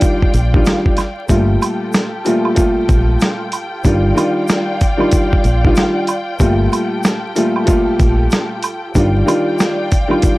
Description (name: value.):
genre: hip hop, boom-bap hip-hop.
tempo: 94 BPM.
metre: 4/4.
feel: swing 63% on 16ths.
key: G minor.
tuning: A4 = 440 Hz.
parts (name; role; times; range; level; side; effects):
dark grand piano; accompaniment; 0.0-10.4 s; Bb2 to F4; -16 LUFS; equal; cassette tape, high-pass filter, low-pass filter.
dark studio string section; sustained chords; 0.0-10.4 s; F4 to G5; -23 LUFS; equal; high-pass filter, low-pass filter.
dusty soul sampler-style drum kit; drums; 0.0-10.4 s; hi-hat, kick drum, rim click, snare drum; -16 LUFS; equal; none.
tube shaker and woodblock; percussion; 0.0-10.4 s; none; -25 LUFS; right 4 dB; none.
deep dub fingered electric bass; bass; 0.3-9.2 s; G1 to Bb1; -14 LUFS; equal; tube saturation.
room: small room ambience.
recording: dry, gritty hardware recording, vinyl crackle.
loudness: -12 LUFS.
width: side -19 dB against mid.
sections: 0.0-10.4 A section.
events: none.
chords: 0.0 Ebmaj9; 1.3 Gm9; 3.8 Ebmaj9/G; 6.4 Gm9; 9.0 Ebmaj9/G.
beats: 0.02 0.66 | 1.29 1.93 2.57 3.21 | 3.85 4.49 5.12 5.76 | 6.40 7.04 7.68 8.31 | 8.95 9.59 10.23.